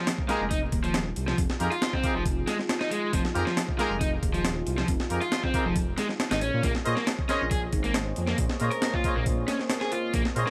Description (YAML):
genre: breakbeat, breaks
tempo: 137 BPM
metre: 4/4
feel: straight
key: F minor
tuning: A4 = 440 Hz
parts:
  - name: deep dark ambient pad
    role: sustained chords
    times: 0.0-10.5 s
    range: Bb3 to Eb5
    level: -39 LUFS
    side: equal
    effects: chorus, built-in reverb, vintage 12-bit sampler grit, sidechain pumping
  - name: raw garage guitar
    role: riff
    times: 0.0-10.5 s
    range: F3 to Bb4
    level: -33 LUFS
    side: equal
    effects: overdrive, delay
  - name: breakbeat sampler-style drum kit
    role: drums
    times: 0.1-10.5 s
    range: hi-hat, kick drum, snare drum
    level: -31 LUFS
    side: equal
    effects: none
  - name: clear horn section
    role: stabs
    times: 0.3-10.5 s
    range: Eb4 to Eb5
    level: -33 LUFS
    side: equal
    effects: delay
  - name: dark detuned saw bass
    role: bass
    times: 0.4-10.4 s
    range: Eb1 to Bb2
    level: -33 LUFS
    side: equal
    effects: none
room: light reverb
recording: vinyl crackle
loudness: -27 LUFS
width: mono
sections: 0.0-10.5 A section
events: none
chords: 0.0 Fm11; 6.4 Bbm11